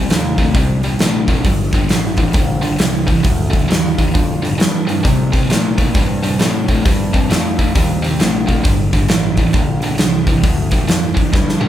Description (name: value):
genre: blues rock power trio and southern rock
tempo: 133 BPM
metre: 4/4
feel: swing 63% on 8ths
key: G minor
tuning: A4 = 440 Hz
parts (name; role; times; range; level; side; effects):
- tight distorted guitar; riff; 0.0-11.7 s; G2 to A3; -18 LUFS; equal; distortion
- growling picked electric bass; bass; 0.0-11.7 s; G1 to C3; -20 LUFS; equal; overdrive
- huge arena drum kit; drums; 0.1-11.7 s; hi-hat, kick drum, snare drum, toms; -15 LUFS; equal; none
room: light reverb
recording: band playing live in one room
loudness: -13 LUFS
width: side -11 dB against mid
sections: 0.0-11.7 A section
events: drum fill 11.3-11.7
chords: 0.0 Cm7; 1.4 Gm7; 5.0 C7(no3); 8.6 Gm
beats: 0.09 0.54 0.99 | 1.44 1.89 2.34 2.79 | 3.25 3.69 4.14 4.60 | 5.05 5.50 5.95 6.40 | 6.85 7.29 7.75 8.20 | 8.64 9.09 9.54 9.99 | 10.44 10.89 11.34